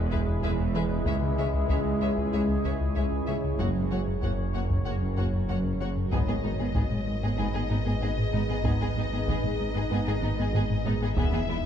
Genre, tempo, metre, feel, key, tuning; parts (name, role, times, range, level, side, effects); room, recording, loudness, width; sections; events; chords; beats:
cinematic, hybrid orchestral and electronic film score; 95 BPM; 4/4; straight; G# minor; A4 = 440 Hz
deep dark ambient pad; sustained chords; 0.0-11.7 s; F#3 to C#5; -34 LUFS; equal; chorus, built-in reverb
warm French horn section; sustained chords; 0.0-11.4 s; G#3 to G#4; -37 LUFS; left 5 dB
round analog bass; riff; 0.0-11.6 s; C#2 to G#3; -32 LUFS; left 2 dB
dark detuned saw bass; bass; 0.0-11.7 s; E1 to C#2; -34 LUFS; equal
dark symphonic cello section; bass; 0.0-11.5 s; C#2 to G#2; -34 LUFS; right 3 dB
rich symphonic double bass section; bass; 0.0-11.6 s; E1 to C#2; -34 LUFS; right 4 dB
rich symphonic violin section; second line; 0.1-11.6 s; D#4 to F#5; -38 LUFS; left 3 dB
warm symphonic viola section; accompaniment; 0.1-11.6 s; G#3 to G#4; -37 LUFS; right 1 dB
taiko ensemble; drums; 0.1-11.7 s; -33 LUFS; equal
warm symphonic violin section; melody; 6.1-11.7 s; D#5 to E5; -36 LUFS; left 7 dB
moderate scoring stage reverb, RT60 1.7 s; dark, warm production; -25 LUFS; side -9 dB against mid
0.0-6.1 A section; 6.1-11.7 B section
0.0 E; 1.1 C#m; 3.6 F#; 6.1 G#m
0.44 | 1.07 1.70 2.33 2.96 | 3.59 4.22 4.86 5.49 | 6.12 6.75 7.38 8.02 | 8.65 9.28 9.91 10.54 | 11.17